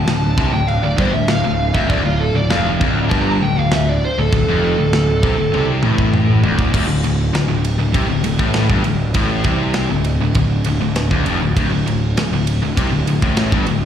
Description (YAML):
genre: heavy metal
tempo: 99 BPM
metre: 4/4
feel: straight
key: D minor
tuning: A4 = 436 Hz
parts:
  - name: high-gain lead guitar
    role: melody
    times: 0.0-5.7 s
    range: F4 to Bb5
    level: -21 LUFS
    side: right 2 dB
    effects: distortion, slapback echo, ping-pong delay
  - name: distorted electric guitar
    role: riff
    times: 0.0-13.9 s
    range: D2 to C3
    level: -20 LUFS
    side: left 7 dB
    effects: overdrive, slapback echo
  - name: heavy high-gain guitar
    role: riff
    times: 0.0-13.9 s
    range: D2 to C3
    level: -23 LUFS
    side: right 11 dB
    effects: distortion, slapback echo
  - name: fuzz picked electric bass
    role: bass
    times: 0.0-13.9 s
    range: D1 to C2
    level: -19 LUFS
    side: right 1 dB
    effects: overdrive
  - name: tight metal drum kit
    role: drums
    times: 0.1-13.8 s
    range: china cymbal, crash cymbal, kick drum, ride cymbal, snare drum, toms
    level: -21 LUFS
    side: right 1 dB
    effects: none
room: little or no reverb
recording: live gig heard through the venue's PA, recital hall reverb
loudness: -14 LUFS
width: side -9 dB against mid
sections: 0.0-6.7 A section; 6.7-13.9 B section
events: lead electric guitar solo 0.0-6.7; drum fill 5.5-6.7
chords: 0.0 Dm; 6.7 D5